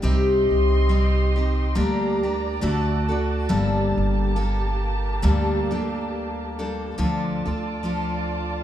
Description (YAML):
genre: acoustic folk duo or small band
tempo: 69 BPM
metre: 4/4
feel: swing 55% on 8ths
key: G minor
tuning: A4 = 441 Hz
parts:
  - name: picked steel-string acoustic guitar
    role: accompaniment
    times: 0.0-8.6 s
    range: G2 to A4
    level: -24 LUFS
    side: left 1 dB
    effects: none
  - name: muted chamber string section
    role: sustained chords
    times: 0.0-8.6 s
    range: Bb3 to C6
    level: -30 LUFS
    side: right 2 dB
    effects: none
  - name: upright bass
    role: bass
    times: 0.0-8.6 s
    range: G1 to D2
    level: -24 LUFS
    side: right 1 dB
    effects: none
room: moderate recital hall reverb, RT60 1.4 s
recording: recorded in a church or concert hall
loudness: -20 LUFS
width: side -11 dB against mid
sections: 0.0-7.0 A section; 7.0-8.6 B section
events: none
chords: 0.0 Cm; 1.8 Gm/D; 2.6 D; 3.5 Gmadd9; 7.0 Dm